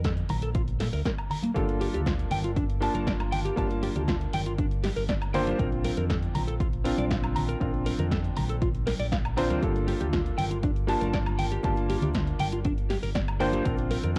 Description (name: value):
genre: nu-disco, nu disco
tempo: 119 BPM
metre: 4/4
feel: straight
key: G minor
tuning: A4 = 438 Hz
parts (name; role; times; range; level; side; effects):
- clean electric guitar; riff; 0.0-14.2 s; Bb3 to Bb5; -36 LUFS; equal; analog chorus, low-pass filter, cassette tape
- fingered electric bass with an envelope filter; bass; 0.0-14.2 s; G1 to Bb2; -33 LUFS; equal; none
- electronic kick drum; drums; 0.0-14.2 s; none; -33 LUFS; equal; none
- house drum kit; drums; 0.0-14.2 s; hi-hat, snare drum, woodblock; -38 LUFS; equal; none
- cabasa and congas; percussion; 0.0-14.2 s; none; -38 LUFS; equal; none
- warm electric grand piano; accompaniment; 1.5-14.2 s; Bb3 to A5; -34 LUFS; equal; sidechain pumping, cassette tape, analog delay
room: light reverb, digital ambience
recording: home recording on cassette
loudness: -28 LUFS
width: mono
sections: 0.0-14.2 A section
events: none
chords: 0.0 Bbmaj7(no3); 1.6 Gm7; 5.6 Bb; 9.6 Gm7; 13.7 Bb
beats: 0.05 0.55 1.05 | 1.56 2.06 2.57 3.07 | 3.58 4.08 4.58 5.09 | 5.59 6.10 6.60 7.11 | 7.61 8.11 8.62 9.12 | 9.63 10.13 10.63 11.14 | 11.64 12.15 12.65 13.15 | 13.66 14.16